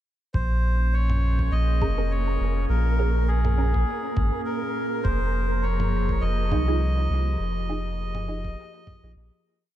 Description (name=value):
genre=ambient dub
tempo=102 BPM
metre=4/4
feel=swing 55% on 16ths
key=Bb dorian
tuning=A4 = 440 Hz
part: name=melodica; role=melody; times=0.3-9.1 s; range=Ab4 to Eb5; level=-32 LUFS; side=equal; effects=dub echo
part: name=warbly tape-like pad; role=sustained chords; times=0.8-9.8 s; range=Bb2 to Eb5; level=-32 LUFS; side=equal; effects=chorus, built-in reverb
part: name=soft dub sub bass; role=bass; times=0.3-9.3 s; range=F1 to C2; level=-23 LUFS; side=equal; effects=tube saturation
part: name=electronic kick drum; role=drums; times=0.3-9.0 s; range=none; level=-28 LUFS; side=equal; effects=small room reverb
part: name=wind-like tuned noise texture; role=texture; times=1.0-9.8 s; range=Bb3 to Bb4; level=-35 LUFS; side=right 2 dB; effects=built-in reverb
part: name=electronic toms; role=drums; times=1.1-9.0 s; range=none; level=-34 LUFS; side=right 1 dB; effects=small room reverb, dub echo
part: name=filtered dub chord stab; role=stabs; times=1.8-9.1 s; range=Db4 to Bb4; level=-33 LUFS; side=right 4 dB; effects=phaser, ensemble chorus, dub echo
room=little or no reverb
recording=echo-heavy mix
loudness=-22 LUFS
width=side -12 dB against mid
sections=0.3-9.8 groove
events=fade-out 6.6-9.8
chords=0.3 Bbm7; 5.0 Fm7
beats=| 0.34 0.93 1.52 2.11 | 2.69 3.28 3.87 4.46 | 5.05 5.64 6.22 6.81 | 7.40 7.99 8.58 9.17